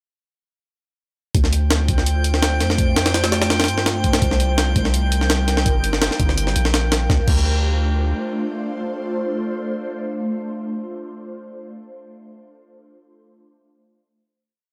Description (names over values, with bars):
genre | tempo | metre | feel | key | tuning
drum and bass, jungle | 167 BPM | 4/4 | straight | D phrygian | A4 = 442 Hz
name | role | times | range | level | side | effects
ethereal airy pad | sustained chords | 1.8-10.7 s | A3 to C5 | -29 LUFS | equal | ensemble chorus, built-in reverb, phaser
long sustained 808-style bass | bass | 1.3-8.1 s | G1 to G2 | -22 LUFS | equal | none
jungle sampler-style drum kit | drums | 1.3-7.4 s | crash cymbal, hi-hat, kick drum, snare drum | -22 LUFS | equal | none
drifting glass-harmonics texture | texture | 1.6-7.1 s | G5 to G6 | -30 LUFS | equal | chorus, built-in reverb
room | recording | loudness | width
light reverb, digital ambience | dry, gritty hardware recording | -20 LUFS | mono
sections
1.3-7.1 drop; 7.1-10.0 final chord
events
drop 1.3-7.1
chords
1.3 Dm7; 4.2 Cm7; 5.7 Gm7; 7.1 Dm7